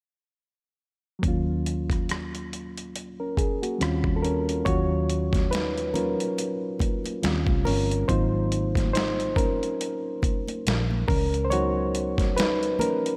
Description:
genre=R&B, neo-soul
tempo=70 BPM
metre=4/4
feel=swing 58% on 16ths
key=Eb minor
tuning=A4 = 442 Hz
part: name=reed electric piano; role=accompaniment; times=1.2-13.2 s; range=Gb3 to Db5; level=-29 LUFS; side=equal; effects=overdrive, slapback echo
part: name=vintage muted fingered electric bass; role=bass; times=1.2-12.8 s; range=G1 to Eb2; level=-31 LUFS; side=equal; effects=none
part: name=dusty soul sampler-style drum kit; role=drums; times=1.2-13.2 s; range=hi-hat, kick drum, rim click, snare drum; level=-30 LUFS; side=equal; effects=overdrive
part: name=congas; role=percussion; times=4.7-13.0 s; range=none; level=-40 LUFS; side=equal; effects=slapback echo
room=moderate lush hall reverb, RT60 2.4 s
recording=big arena sound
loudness=-26 LUFS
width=mono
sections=1.2-4.7 A section; 4.7-13.2 B section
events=reed electric piano solo 4.7-13.2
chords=1.2 Ebm7; 3.8 Eb13; 4.7 Ebm7; 7.2 Eb13; 8.1 Ab13; 11.1 Db9sus4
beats=| 1.23 2.08 2.94 3.80 | 4.66 5.51 6.37 7.23 | 8.08 8.94 9.80 10.65 | 11.51 12.37

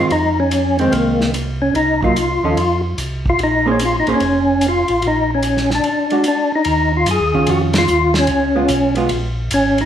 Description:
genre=soul jazz organ trio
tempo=147 BPM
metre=4/4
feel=swing 67% on 8ths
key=Bb minor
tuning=A4 = 440 Hz
part: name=percussive tonewheel organ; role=melody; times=0.0-9.9 s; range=Bb3 to Ab4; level=-16 LUFS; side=left 1 dB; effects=slow rotary speaker, overdrive, chorus vibrato
part: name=vintage hollow-body jazz guitar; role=accompaniment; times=0.0-9.1 s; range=Eb3 to C5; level=-19 LUFS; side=right 3 dB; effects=none
part: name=mellow tonewheel organ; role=bass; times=0.0-9.9 s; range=F1 to Gb2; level=-22 LUFS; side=right 1 dB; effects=chorus vibrato, slow rotary speaker
part: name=warm soul drum kit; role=drums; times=0.1-9.8 s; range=hi-hat, kick drum, ride cymbal, snare drum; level=-25 LUFS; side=equal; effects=none
room=wet large studio reverb, RT60 0.9 s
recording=heard from further back in the room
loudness=-14 LUFS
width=side -10 dB against mid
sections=0.0-6.7 A section; 6.7-9.9 B section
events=band accent 7.7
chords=0.1 Fm7; 1.8 Cm7b5; 2.6 F5; 3.4 Bbm; 5.8 Ebmmaj7; 6.7 Ebm9; 8.3 Db7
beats=| 0.11 0.52 0.93 1.34 | 1.75 2.16 2.57 2.98 | 3.39 3.80 4.21 4.62 | 5.03 5.44 5.85 6.25 | 6.66 7.07 7.48 7.89 | 8.29 8.70 9.11 9.52

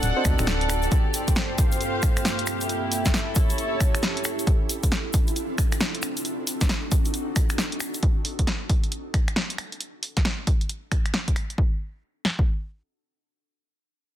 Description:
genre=UK garage, two-step garage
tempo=135 BPM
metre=4/4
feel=swing 63% on 16ths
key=D minor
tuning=A4 = 440 Hz
part: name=ethereal airy pad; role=sustained chords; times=0.0-8.0 s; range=G2 to A4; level=-32 LUFS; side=right 2 dB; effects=ensemble chorus, built-in reverb, sidechain pumping
part: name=organ-like FM bass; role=bass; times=0.0-0.9 s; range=D1 to D2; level=-25 LUFS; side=equal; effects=none
part: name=punchy analog drum machine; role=drums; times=0.0-11.6 s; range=finger snaps, hi-hat, snare drum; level=-27 LUFS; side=equal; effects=none
part: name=egg shaker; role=percussion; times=0.0-8.0 s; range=none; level=-34 LUFS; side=left 3 dB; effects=none
part: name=warm studio string section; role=texture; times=0.0-4.5 s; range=E4 to F#5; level=-28 LUFS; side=left 1 dB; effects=sidechain pumping
part: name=deep mellow chord stab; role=stabs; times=0.2-0.5 s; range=C4 to C5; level=-30 LUFS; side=right 2 dB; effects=lush chorus, tape echo
part: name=punchy analog drum machine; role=drums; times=0.2-12.5 s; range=kick drum, snare drum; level=-22 LUFS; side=equal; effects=none
room=light reverb, digital ambience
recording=dense, heavily limited modern master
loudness=-22 LUFS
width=side -12 dB against mid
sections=0.0-11.6 A section; 11.6-14.2 B section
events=none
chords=0.0 D7b9; 0.9 Gm11; 2.7 A7; 4.5 Dm9; 6.0 D7b9; 8.0 N.C.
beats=0.03 0.47 | 0.92 1.36 1.80 2.25 | 2.69 3.14 3.58 4.03 | 4.47 4.92 5.36 5.80 | 6.25 6.69 7.14 7.58 | 8.03 8.47 8.91 9.36 | 9.80 10.25 10.69 11.14 | 11.58 12.03

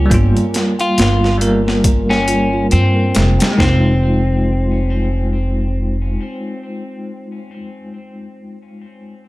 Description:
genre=trip hop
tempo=69 BPM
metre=4/4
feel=swing 58% on 16ths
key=F minor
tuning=A4 = 439 Hz
part: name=bell-like tine electric piano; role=accompaniment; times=0.0-9.3 s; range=G3 to Bb4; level=-20 LUFS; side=equal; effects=tremolo
part: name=music box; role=arpeggios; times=0.0-4.0 s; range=Eb4 to G5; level=-25 LUFS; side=right 4 dB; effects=vintage 12-bit sampler grit, digital delay
part: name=upright bass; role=bass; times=0.0-6.2 s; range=F1 to G2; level=-16 LUFS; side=equal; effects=none
part: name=boom bap sampler-style drum kit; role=drums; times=0.1-3.8 s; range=hi-hat, kick drum, snare drum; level=-17 LUFS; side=equal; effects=overdrive
part: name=electric guitar at the edge of break-up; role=melody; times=0.8-7.5 s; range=C4 to F4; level=-21 LUFS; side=left 1 dB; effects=tape echo
room=little or no reverb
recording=none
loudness=-13 LUFS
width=side -19 dB against mid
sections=0.0-3.6 A section; 3.6-7.1 B section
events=none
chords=0.0 Gm7; 3.6 Fm7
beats=| 0.10 0.97 1.84 2.71 | 3.58 4.45 5.32 6.19

